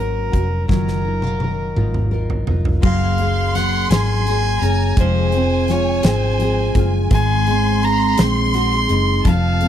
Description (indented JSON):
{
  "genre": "six-eight pop ballad",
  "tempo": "56 BPM (dotted quarters)",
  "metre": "6/8",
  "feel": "straight",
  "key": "unclear",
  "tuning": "A4 = 440 Hz",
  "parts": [
    { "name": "warm violin", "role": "melody", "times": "0.0-9.7 s", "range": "Bb4 to C6", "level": "-22 LUFS", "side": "equal", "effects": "none" },
    { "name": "nylon-string guitar", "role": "accompaniment", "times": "0.0-9.7 s", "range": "F3 to Bb4", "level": "-22 LUFS", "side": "equal", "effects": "double-tracked left and right" },
    { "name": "picked steel-string acoustic guitar", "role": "arpeggios", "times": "0.0-9.7 s", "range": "F2 to Bb4", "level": "-26 LUFS", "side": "left 5 dB", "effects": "none" },
    { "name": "vintage muted fingered electric bass", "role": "bass", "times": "0.0-9.7 s", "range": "F1 to Bb1", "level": "-20 LUFS", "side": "equal", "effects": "none" },
    { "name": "huge arena drum kit", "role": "drums", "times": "0.3-9.7 s", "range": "crash cymbal, hi-hat, kick drum, snare drum, toms", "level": "-21 LUFS", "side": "equal", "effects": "none" },
    { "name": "clear studio violin section", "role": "second line", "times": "2.8-9.7 s", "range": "Ab5 to C6", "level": "-27 LUFS", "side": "right 2 dB", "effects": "none" }
  ],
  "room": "little or no reverb",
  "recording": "dry, close 1970s-style studio recording",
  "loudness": "-15 LUFS",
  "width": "side -10 dB against mid",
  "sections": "0.0-2.8 A section; 2.8-9.7 B section",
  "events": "drum fill 0.7-2.8",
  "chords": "0.0 Gb; 0.7 Ebmadd9/Gb; 2.8 Gbadd9; 5.0 Fm; 7.1 Ab",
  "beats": "| 0.70 1.77 | 2.84 3.91 | 4.98 6.05 | 7.12 8.19 | 9.26"
}